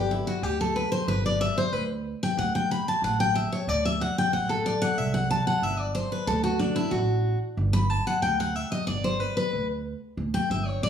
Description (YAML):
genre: bluegrass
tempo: 185 BPM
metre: 4/4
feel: straight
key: D mixolydian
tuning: A4 = 441 Hz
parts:
  - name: picked steel-string acoustic guitar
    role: accompaniment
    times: 0.0-10.9 s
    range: D4 to B5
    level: -25 LUFS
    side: left 1 dB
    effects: none
  - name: upright bass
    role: bass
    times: 0.0-10.9 s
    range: G1 to D2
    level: -29 LUFS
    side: right 2 dB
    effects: none
room: wet large studio reverb, RT60 1.0 s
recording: band playing live in one room, studio reverb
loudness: -24 LUFS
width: side -8 dB against mid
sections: 0.0-10.9 A section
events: steel-string acoustic guitar solo 0.0-10.9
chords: 0.0 G5; 2.4 D5; 5.0 C5; 6.3 D; 7.6 G; 10.2 D5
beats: 0.11 0.43 0.76 | 1.08 1.41 1.73 2.05 | 2.38 2.70 3.03 3.35 | 3.68 4.00 4.33 4.65 | 4.97 5.30 5.62 5.95 | 6.27 6.60 6.92 7.25 | 7.57 7.90 8.22 8.55 | 8.88 9.20 9.53 9.85 | 10.18 10.50 10.82